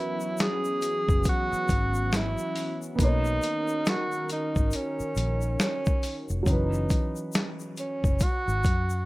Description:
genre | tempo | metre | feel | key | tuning
lo-fi hip hop | 69 BPM | 4/4 | swing 62% on 16ths | B major | A4 = 438 Hz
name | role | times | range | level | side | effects
breathy tenor saxophone | melody | 0.0-9.1 s | C#4 to G#4 | -30 LUFS | right 1 dB | low-pass filter
dark upright piano | accompaniment | 0.0-9.1 s | E3 to C#5 | -34 LUFS | right 1 dB | cassette tape, low-pass filter
hollow soft pad | sustained chords | 0.0-6.4 s | D#3 to A#4 | -35 LUFS | equal | chorus, low-pass filter
egg shaker | percussion | 0.2-9.1 s | none | -45 LUFS | left 5 dB | none
dusty soul sampler-style drum kit | drums | 0.4-8.9 s | hi-hat, kick drum, snare drum | -26 LUFS | equal | none
vintage muted fingered electric bass | bass | 1.1-9.0 s | E#1 to F#2 | -28 LUFS | equal | none
room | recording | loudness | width
light reverb, small room ambience | none | -24 LUFS | side -20 dB against mid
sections
0.0-9.1 A section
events
none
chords
0.0 F#7sus4; 3.0 Bmaj9; 6.5 F#7sus4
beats
0.38 1.25 2.12 | 2.99 3.86 4.73 5.59 | 6.46 7.33 8.20

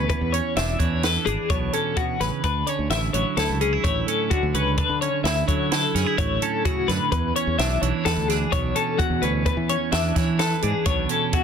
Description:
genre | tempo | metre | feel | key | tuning
math rock and midwest emo | 128 BPM | 5/4 | straight | unclear | A4 = 440 Hz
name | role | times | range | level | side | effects
twelve-string electric guitar | accompaniment | 0.0-11.4 s | E2 to B4 | -26 LUFS | right 12 dB | none
twelve-string electric guitar | arpeggios | 0.0-11.4 s | F#4 to E5 | -24 LUFS | left 8 dB | tremolo
fingered electric bass | bass | 0.0-11.0 s | E1 to E3 | -26 LUFS | equal | none
compact cocktail drum kit | drums | 0.1-11.4 s | hi-hat, kick drum, snare drum | -26 LUFS | right 1 dB | none
room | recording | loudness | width
light reverb | dense, heavily limited modern master | -20 LUFS | side -7 dB against mid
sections
0.0-11.4 A section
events
none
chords
0.0 E13; 2.4 Dmaj9; 7.1 E13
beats
| 0.10 0.56 1.03 1.50 1.97 | 2.44 2.90 3.37 3.84 4.31 | 4.78 5.25 5.71 6.18 6.65 | 7.12 7.59 8.06 8.52 8.99 | 9.46 9.93 10.40 10.86 11.33

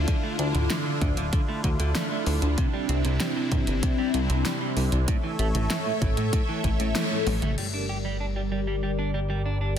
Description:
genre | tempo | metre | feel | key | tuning
synthwave | 96 BPM | 4/4 | straight | unclear | A4 = 437 Hz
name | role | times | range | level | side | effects
phased analog pad | sustained chords | 0.0-9.8 s | C3 to E5 | -29 LUFS | left 1 dB | phaser, chorus, sidechain pumping
chorused synth bass | bass | 0.0-9.8 s | D1 to A2 | -26 LUFS | equal | tube saturation, sidechain pumping
clean electric guitar | riff | 0.1-9.7 s | A2 to G4 | -33 LUFS | right 3 dB | wide subtle chorus, low-pass filter, ping-pong delay
electronic kick drum | drums | 0.1-6.8 s | none | -26 LUFS | equal | none
pop drum kit | drums | 0.1-9.8 s | crash cymbal, hi-hat, snare drum, toms | -32 LUFS | equal | none
room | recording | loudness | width
light reverb, digital ambience | dense, heavily limited modern master | -23 LUFS | side -9 dB against mid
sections
0.0-7.6 A section; 7.6-9.8 B section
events
band accent 7.0-7.3; drum fill 7.3-7.6; filter sweep on analog synth pad 7.6-9.8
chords
0.0 Dmadd9; 2.6 Cadd9; 5.1 A; 7.6 Gm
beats
| 0.08 0.70 1.33 1.95 | 2.58 3.20 3.83 4.45 | 5.08 5.70 6.33 6.95 | 7.58 8.20 8.83 9.45

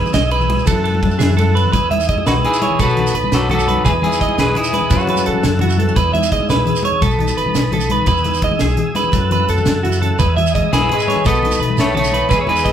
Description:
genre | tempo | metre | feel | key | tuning
highlife guitar band | 114 BPM (dotted quarters) | 12/8 | straight | E major | A4 = 439 Hz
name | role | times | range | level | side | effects
nylon-string guitar | accompaniment | 0.0-12.7 s | E2 to G#4 | -24 LUFS | left 4 dB | none
combo organ | sustained chords | 0.0-12.7 s | D#5 to E6 | -27 LUFS | equal | none
electric guitar at the edge of break-up | arpeggios | 0.0-12.7 s | F#4 to E5 | -19 LUFS | right 3 dB | vibrato effect
upright bass | bass | 0.0-12.7 s | B1 to F#2 | -20 LUFS | equal | none
tight funk drum kit | drums | 0.1-12.7 s | hi-hat, kick drum, ride cymbal, snare drum | -21 LUFS | left 1 dB | none
congas | percussion | 0.1-12.7 s | none | -24 LUFS | left 4 dB | none
shekere | percussion | 0.1-12.7 s | none | -24 LUFS | right 4 dB | none
electric guitar at the edge of break-up | melody | 2.3-5.4, 10.7-12.7 s | C#4 to D#5 | -18 LUFS | equal | none
bright trombone | second line | 2.3-5.4, 10.7-12.7 s | C#3 to B3 | -26 LUFS | left 4 dB | none
room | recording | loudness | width
moderate large studio reverb, RT60 0.9 s | band playing live in one room | -13 LUFS | side -9 dB against mid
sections
0.0-1.7 A section; 1.7-12.7 B section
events
drum fill 9.7-10.2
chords
0.0 Emaj7; 0.7 F#m7; 1.7 Emaj7; 2.8 B7; 3.8 Emaj7; 4.9 F#m7; 6.0 Emaj7; 7.0 B7; 8.1 Emaj7; 9.1 F#m7; 10.2 Emaj7; 11.2 B7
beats
0.15 0.68 1.21 | 1.73 2.26 2.79 3.32 | 3.85 4.38 4.90 5.43 | 5.96 6.49 7.02 7.54 | 8.07 8.60 9.13 9.66 | 10.19 10.72 11.25 11.78 | 12.31

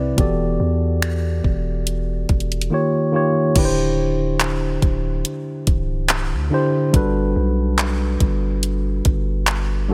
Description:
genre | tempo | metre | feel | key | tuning
contemporary R&B | 71 BPM | 4/4 | swing 54% on 16ths | unclear | A4 = 440 Hz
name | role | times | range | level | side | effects
mellow tine electric piano | accompaniment | 0.0-9.9 s | C3 to D5 | -23 LUFS | equal | none
long sustained 808-style bass | bass | 0.0-9.9 s | C1 to E2 | -24 LUFS | equal | none
smooth R&B drum kit | drums | 0.2-9.7 s | crash cymbal, finger snaps, handclaps, hi-hat, kick drum | -22 LUFS | equal | none
room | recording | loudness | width
light reverb, digital ambience | none | -20 LUFS | mono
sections
0.0-3.6 A section; 3.6-9.9 B section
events
none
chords
0.2 Em11; 2.7 D#9; 3.6 D9sus4; 6.9 Gmaj9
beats
| 0.18 1.02 1.87 2.71 | 3.56 4.40 5.25 6.09 | 6.94 7.78 8.63 9.47

